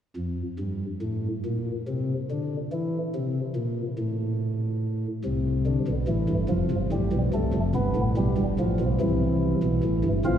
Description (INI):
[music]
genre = classical, baroque-style 4-part fugue for pipe organ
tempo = 48 BPM (dotted quarters)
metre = 6/8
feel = straight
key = unclear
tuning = A4 = 442 Hz
[part]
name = chamber organ, flutes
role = solo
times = 0.2-10.4 s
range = F1 to F4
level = -24 LUFS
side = equal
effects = none
[sound]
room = wet cathedral reverb, RT60 4.2 s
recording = recorded in a church or concert hall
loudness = -24 LUFS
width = side -9 dB against mid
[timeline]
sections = 0.2-10.4 A section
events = none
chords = 0.2 N.C.; 5.3 C; 6.5 Fadd9; 7.8 G7; 9.0 C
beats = | 0.17 1.45 | 2.72 3.98 | 5.25 6.51 | 7.76 9.02 | 10.27